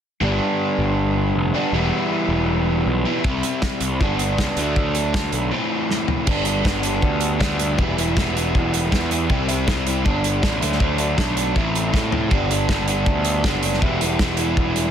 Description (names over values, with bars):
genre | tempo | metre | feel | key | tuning
indie rock | 159 BPM | 4/4 | straight | G major | A4 = 440 Hz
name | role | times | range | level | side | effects
overdriven electric guitar | riff | 0.2-14.9 s | G2 to E4 | -21 LUFS | equal | none
fuzz picked electric bass | bass | 0.2-14.9 s | E1 to A2 | -23 LUFS | equal | overdrive
loose indie drum kit | drums | 3.2-14.8 s | crash cymbal, hi-hat, kick drum, snare drum, toms | -22 LUFS | equal | none
room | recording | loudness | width
light reverb | dense, heavily limited modern master | -18 LUFS | side -9 dB against mid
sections
0.2-6.3 A section; 6.3-14.9 B section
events
drum fill 5.9-6.3, 11.9-12.3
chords
0.2 G; 1.7 Em; 3.2 C; 4.0 G; 4.6 D; 5.5 Am; 6.3 G; 7.8 Em; 9.3 C; 10.0 G; 10.6 D; 11.6 Am; 12.3 G; 13.8 Em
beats
| 0.21 0.59 0.97 1.35 | 1.73 2.10 2.48 2.86 | 3.24 3.62 4.00 4.38 | 4.76 5.14 5.51 5.89 | 6.27 6.65 7.03 7.41 | 7.78 8.16 8.54 8.91 | 9.29 9.67 10.05 10.42 | 10.80 11.18 11.55 11.93 | 12.31 12.68 13.06 13.44 | 13.81 14.19 14.57